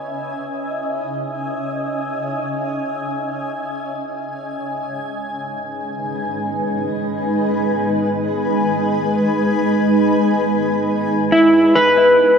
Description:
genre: ambient.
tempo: free time.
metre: none.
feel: none.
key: C# minor.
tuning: A4 = 440 Hz.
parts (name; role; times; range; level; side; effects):
granular cloud pad; sustained chords; 0.0-12.4 s; G#3 to G#5; -19 LUFS; equal; built-in reverb.
electric slide guitar; melody; 11.3-12.4 s; E4 to B4; -10 LUFS; equal; dub echo.
room: wet spring reverb, RT60 2.0 s.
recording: none.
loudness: -17 LUFS.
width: side -6 dB against mid.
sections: 0.0-12.4 A section.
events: fade-in on ambient pad 0.0-12.4.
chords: 0.0 C#m9; 4.5 G#m; 11.3 C#m9.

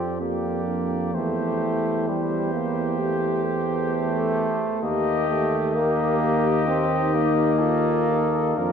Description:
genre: classical, brass quintet.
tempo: 65 BPM.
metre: 4/4.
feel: rubato.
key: unclear.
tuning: A4 = 440 Hz.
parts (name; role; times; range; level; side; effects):
mellow cornet; melody; 0.0-8.7 s; C5 to Eb5; -29 LUFS; left 9 dB; none.
mellow trumpet; second line; 0.0-8.7 s; G4 to Bb4; -31 LUFS; right 4 dB; none.
clear trombone; accompaniment; 0.0-8.7 s; F3 to C4; -26 LUFS; right 2 dB; none.
mellow French horn; accompaniment; 0.0-8.7 s; D4 to Bb4; -28 LUFS; left 6 dB; none.
warm tuba; bass; 0.0-8.7 s; Eb2 to F2; -26 LUFS; right 3 dB; none.
room: wet church reverb, RT60 3.8 s.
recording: none.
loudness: -21 LUFS.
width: side -7 dB against mid.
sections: 0.0-8.7 A section.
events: none.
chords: 0.0 Gm7/F; 1.1 C/E; 4.8 Eb.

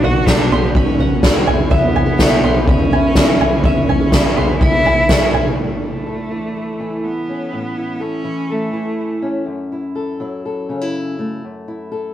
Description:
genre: indie folk with a building arrangement.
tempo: 124 BPM.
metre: 4/4.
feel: straight.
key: A major.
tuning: A4 = 440 Hz.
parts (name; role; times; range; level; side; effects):
clear cello; melody; 0.0-9.2 s; A3 to F#4; -21 LUFS; right 1 dB; digital delay.
picked plugged-in twelve-string acoustic guitar; accompaniment; 0.0-5.6 s; B2 to G#4; -21 LUFS; left 2 dB; none.
bluegrass banjo; arpeggios; 0.0-5.6 s; D5 to C6; -24 LUFS; right 4 dB; none.
upright bass; bass; 0.0-5.5 s; G#1 to E2; -27 LUFS; left 1 dB; none.
soft-mallet drum kit; drums; 0.0-5.5 s; kick drum, snare drum, toms; -14 LUFS; equal; none.
tambourine; percussion; 0.3-5.2 s; none; -38 LUFS; left 6 dB; none.
fingerpicked steel-string acoustic guitar; accompaniment; 5.6-12.1 s; F#2 to A4; -23 LUFS; left 1 dB; none.
room: moderate stone room reverb, RT60 1.0 s.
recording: rough rehearsal-room recording, warm saturation.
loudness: -14 LUFS.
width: side -11 dB against mid.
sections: 0.0-5.6 A section; 5.6-12.1 B section.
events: none.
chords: 0.0 Bm; 1.5 E; 5.6 A; 9.5 F#m7.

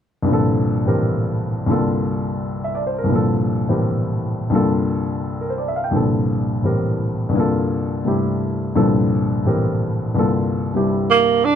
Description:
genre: jazz.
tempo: 170 BPM.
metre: 4/4.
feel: swing 64% on 8ths.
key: C mixolydian.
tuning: A4 = 440 Hz.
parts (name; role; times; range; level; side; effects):
warm baby grand piano; accompaniment; 0.2-11.6 s; C2 to G5; -18 LUFS; left 1 dB; none.
breathy tenor saxophone; melody; 11.1-11.6 s; Bb3 to D4; -13 LUFS; right 6 dB; none.
room: light reverb.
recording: close, detailed microphones.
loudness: -17 LUFS.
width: side -8 dB against mid.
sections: 0.3-11.6 A section.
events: none.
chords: 0.3 C13sus4.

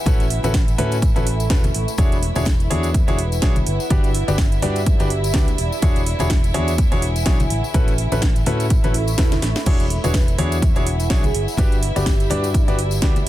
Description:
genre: piano house.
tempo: 125 BPM.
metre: 4/4.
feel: swing 56% on 16ths.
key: unclear.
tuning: A4 = 440 Hz.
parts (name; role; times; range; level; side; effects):
warm studio violin section; sustained chords; 0.0-13.3 s; E4 to E5; -31 LUFS; right 3 dB; sidechain pumping.
deep dark ambient pad; texture; 0.0-13.3 s; E4 to C#6; -30 LUFS; right 1 dB; chorus, built-in reverb, sidechain pumping.
clear grand piano; riff; 0.1-13.1 s; C#4 to D5; -25 LUFS; left 1 dB; sidechain pumping, digital delay.
fingered electric bass; bass; 0.1-13.3 s; E1 to A2; -22 LUFS; equal; sidechain pumping.
electronic kick drum; drums; 0.1-13.1 s; none; -18 LUFS; equal; none.
house drum kit; drums; 0.1-13.3 s; crash cymbal, hi-hat, snare drum; -27 LUFS; right 1 dB; none.
congas and tambourine; percussion; 0.1-13.2 s; none; -29 LUFS; left 3 dB; none.
swell; sound effects; 8.8-9.7 s; none; -30 LUFS; right 7 dB; none.
breathy flute-like synth lead; melody; 10.0-12.6 s; G4 to B4; -30 LUFS; right 2 dB; lush chorus, digital delay.
room: little or no reverb.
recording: dense, heavily limited modern master.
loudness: -16 LUFS.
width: side -14 dB against mid.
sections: 0.0-13.3 A section.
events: swell 8.8-9.7; drum fill 9.3-9.7.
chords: 0.0 A69; 2.0 E13; 3.7 Gmaj7; 5.6 E13; 7.5 A69; 9.7 E13; 11.3 Gmaj7.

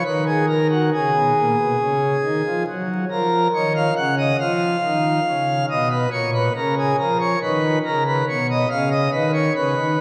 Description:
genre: classical, chorale-style piece for pipe organ.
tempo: 69 BPM.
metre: 4/4.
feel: rubato.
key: unclear.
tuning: A4 = 440 Hz.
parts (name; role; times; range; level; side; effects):
pipe organ, principal chorus; solo; 0.0-10.0 s; A#2 to F#5; -20 LUFS; equal; none.
room: wet church reverb, RT60 2.8 s.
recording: vinyl crackle.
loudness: -20 LUFS.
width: mono.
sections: 0.0-10.0 A section.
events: none.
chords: 0.0 C#7; 2.7 F#5; 4.4 C#7; 6.1 A#madd11.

